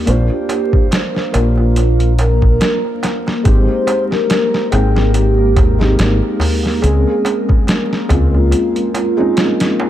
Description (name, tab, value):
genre	trip hop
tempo	71 BPM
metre	4/4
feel	swing 56% on 16ths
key	unclear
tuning	A4 = 440 Hz
part	felt-muted upright piano	accompaniment	0.0-9.9 s	Ab3 to G5	-20 LUFS	equal	harmonic tremolo, vintage 12-bit sampler grit, tape echo
part	warbly tape-like pad	sustained chords	0.0-9.9 s	Bb3 to Bb4	-22 LUFS	left 2 dB	chorus, built-in reverb, tremolo, vintage 12-bit sampler grit
part	deep dub fingered electric bass	bass	0.1-8.5 s	Ab1 to Db2	-13 LUFS	equal	none
part	boom bap sampler-style drum kit	drums	0.1-9.8 s	hi-hat, kick drum, snare drum	-16 LUFS	equal	none
part	darbuka	percussion	0.1-9.9 s	none	-24 LUFS	right 1 dB	none
part	pure breathy sine lead	melody	0.3-9.9 s	F4 to C5	-20 LUFS	right 2 dB	analog chorus, tape echo
room	little or no reverb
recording	vinyl crackle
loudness	-12 LUFS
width	side -12 dB against mid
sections	0.0-9.9 A section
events	none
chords	0.1 Bb; 3.5 Abmaj7; 6.8 Dbmaj7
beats	| 0.07 0.92 1.76 2.61 | 3.46 4.30 5.15 5.99 | 6.84 7.68 8.53 9.37